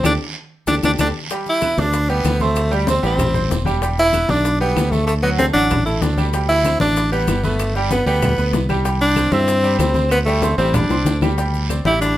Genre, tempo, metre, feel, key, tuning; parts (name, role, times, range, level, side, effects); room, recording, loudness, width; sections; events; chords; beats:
latin, salsa; 191 BPM; 4/4; straight; A4 = 440 Hz
bright tenor saxophone; melody; 0.0-12.2 s; G3 to E4; -18 LUFS; equal
bright grand piano; accompaniment; 0.0-12.1 s; F#3 to E6; -24 LUFS; right 2 dB
fingered electric bass; bass; 0.0-12.2 s; E1 to G2; -20 LUFS; equal
bongos; percussion; 0.0-12.2 s; -27 LUFS; left 5 dB
claves; percussion; 0.0-11.9 s; -34 LUFS; right 8 dB
congas; percussion; 0.0-12.2 s; -25 LUFS; left 2 dB
guiro; percussion; 0.1-12.2 s; -34 LUFS; right 5 dB
maracas; percussion; 0.1-12.2 s; -35 LUFS; left 5 dB
moderate studio reverb, RT60 0.6 s; -15 LUFS; side -14 dB against mid
0.0-1.3 A section; 1.3-11.4 A section
band accent 0.0-1.3; drum fill 10.8-11.4
0.0 Dsus4; 1.3 G6; 2.6 D7sus4; 3.8 Em7; 5.1 D; 6.3 D7sus4; 7.6 G; 8.9 C; 10.1 D7sus4
| 0.05 0.36 0.68 0.99 | 1.31 1.62 1.94 2.25 | 2.56 2.88 3.19 3.51 | 3.82 4.14 4.45 4.77 | 5.08 5.40 5.71 6.02 | 6.34 6.65 6.97 7.28 | 7.60 7.91 8.23 8.54 | 8.86 9.17 9.49 9.80 | 10.12 10.43 10.75 11.07 | 11.38 11.70 12.02